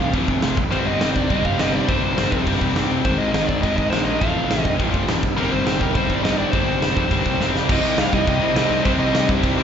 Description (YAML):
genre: punk rock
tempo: 206 BPM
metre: 4/4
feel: straight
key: C minor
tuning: A4 = 439 Hz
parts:
  - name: nasal lead guitar with a parked wah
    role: melody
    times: 0.0-9.3 s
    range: Bb4 to F5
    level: -25 LUFS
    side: right 1 dB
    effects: overdrive, slapback echo, tape echo
  - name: cranked stack guitar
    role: riff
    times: 0.0-9.6 s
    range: F2 to C4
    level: -24 LUFS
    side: left 12 dB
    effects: overdrive, slapback echo
  - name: fuzz guitar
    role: riff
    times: 0.0-9.6 s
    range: C3 to A4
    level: -27 LUFS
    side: left 1 dB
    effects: distortion, slapback echo
  - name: overdriven semi-hollow guitar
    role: riff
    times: 0.0-9.6 s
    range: F2 to C4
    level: -26 LUFS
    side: right 9 dB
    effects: none
  - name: fuzz picked electric bass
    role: bass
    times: 0.0-9.6 s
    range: F1 to G2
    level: -25 LUFS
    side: equal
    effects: overdrive
  - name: big rock drum kit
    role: drums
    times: 0.1-9.5 s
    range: crash cymbal, kick drum, snare drum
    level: -23 LUFS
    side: equal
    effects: none
room: small room ambience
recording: live gig heard through the venue's PA, club reverb, nothing above 7.7 kHz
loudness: -17 LUFS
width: side -8 dB against mid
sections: 0.0-7.7 A section; 7.7-9.6 B section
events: drum fill 7.4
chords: 0.0 F/A; 0.6 Cm/G; 3.0 Ab; 4.2 F/A; 5.2 Cm/G; 7.7 Cm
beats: 0.14 0.43 | 0.72 1.01 1.30 1.59 | 1.88 2.17 2.46 2.75 | 3.05 3.34 3.63 3.92 | 4.21 4.50 4.79 5.08 | 5.37 5.66 5.95 6.24 | 6.53 6.82 7.11 7.41 | 7.70 7.99 8.28 8.56 | 8.86 9.14 9.44